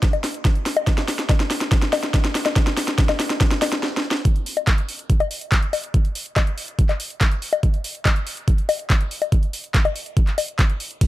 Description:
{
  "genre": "trance",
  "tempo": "142 BPM",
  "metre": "4/4",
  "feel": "straight",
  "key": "none",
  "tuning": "none",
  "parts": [
    { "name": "drum and bass drum kit", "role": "drums", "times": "0.0-11.1 s", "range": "bongos, handclaps, hi-hat, ride cymbal, snare drum", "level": "-22 LUFS", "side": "left 2 dB", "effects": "overdrive" },
    { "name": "electronic kick drum", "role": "drums", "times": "0.0-11.1 s", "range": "none", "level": "-18 LUFS", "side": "equal", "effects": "overdrive" }
  ],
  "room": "light reverb",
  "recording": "none",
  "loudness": "-18 LUFS",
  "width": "side -16 dB against mid",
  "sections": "0.0-4.3 A section; 4.3-11.1 B section",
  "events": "build-up 0.0-4.3; drum fill 0.0-3.8, 3.8-4.3; stop 3.8-4.3; drop 4.3-11.1",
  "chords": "none"
}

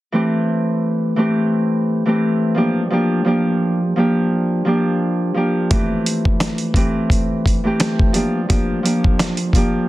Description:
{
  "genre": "hip hop, boom-bap hip-hop",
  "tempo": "86 BPM",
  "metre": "4/4",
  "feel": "swing 56% on 16ths",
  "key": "A phrygian",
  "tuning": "A4 = 445 Hz",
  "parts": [
    { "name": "Celtic harp", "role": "accompaniment", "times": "0.1-9.9 s", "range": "E3 to G4", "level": "-17 LUFS", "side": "equal", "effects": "cassette tape, high-pass filter, low-pass filter" },
    { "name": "dusty soul sampler-style drum kit", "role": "drums", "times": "5.7-9.7 s", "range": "hi-hat, kick drum, snare drum", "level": "-17 LUFS", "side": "equal", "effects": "none" }
  ],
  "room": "light reverb, digital ambience",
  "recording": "dense, heavily limited modern master",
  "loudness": "-16 LUFS",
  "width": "side -16 dB against mid",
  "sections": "0.1-9.9 A section",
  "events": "none",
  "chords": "0.1 Am7; 2.6 Gm7; 5.7 Am7; 8.1 Gm7"
}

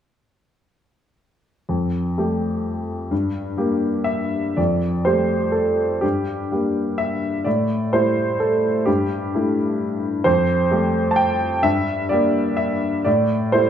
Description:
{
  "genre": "neoclassical minimalist piano",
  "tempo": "127 BPM",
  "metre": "3/4",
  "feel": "rubato",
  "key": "F major",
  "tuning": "A4 = 440 Hz",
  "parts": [
    { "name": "clear upright piano", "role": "solo", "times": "1.7-13.7 s", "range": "F2 to A5", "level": "-18 LUFS", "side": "equal", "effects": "none" }
  ],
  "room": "wet large studio reverb, RT60 1.4 s",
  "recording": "band playing live in one room",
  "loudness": "-18 LUFS",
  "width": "side -9 dB against mid",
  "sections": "1.7-4.6 A section; 4.6-13.7 B section",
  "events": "none",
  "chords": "1.7 Fadd9; 3.1 Gm; 4.6 Fadd9; 6.0 Gm; 7.5 Am7; 8.9 Emadd11/G; 10.3 Fadd9; 11.7 Gm; 13.1 Am7"
}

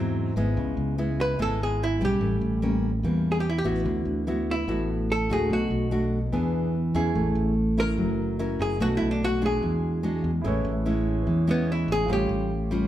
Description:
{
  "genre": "bossa nova",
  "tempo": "146 BPM",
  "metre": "4/4",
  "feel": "straight",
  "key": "A major",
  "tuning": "A4 = 440 Hz",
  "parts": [
    { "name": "archtop guitar, miked and amplified", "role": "melody", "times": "0.0-12.9 s", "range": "B3 to B4", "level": "-28 LUFS", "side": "equal", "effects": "none" },
    { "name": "nylon-string guitar", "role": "accompaniment", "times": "0.0-12.9 s", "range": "G#2 to Bb4", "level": "-26 LUFS", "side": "equal", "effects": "none" },
    { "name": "fingered electric bass", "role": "bass", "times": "0.0-12.9 s", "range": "F#1 to E2", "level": "-29 LUFS", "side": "equal", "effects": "none" },
    { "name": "warm grand piano", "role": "accompaniment", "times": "10.4-12.9 s", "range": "E4 to C#5", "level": "-34 LUFS", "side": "right 4 dB", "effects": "none" }
  ],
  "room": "moderate large studio reverb, RT60 1.2 s",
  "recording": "band playing live in one room",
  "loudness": "-23 LUFS",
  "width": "side -12 dB against mid",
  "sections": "0.0-10.4 A section; 10.4-12.9 B section",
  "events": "hollow-body jazz guitar solo 10.4-12.9",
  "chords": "0.0 G#7alt; 0.6 C#m7; 2.2 A7b9; 3.9 D69; 5.5 Bm7; 6.3 E7; 7.2 Amaj7; 8.0 F#7; 8.8 Bm7; 9.6 E9; 10.4 Amaj7; 12.1 A7alt"
}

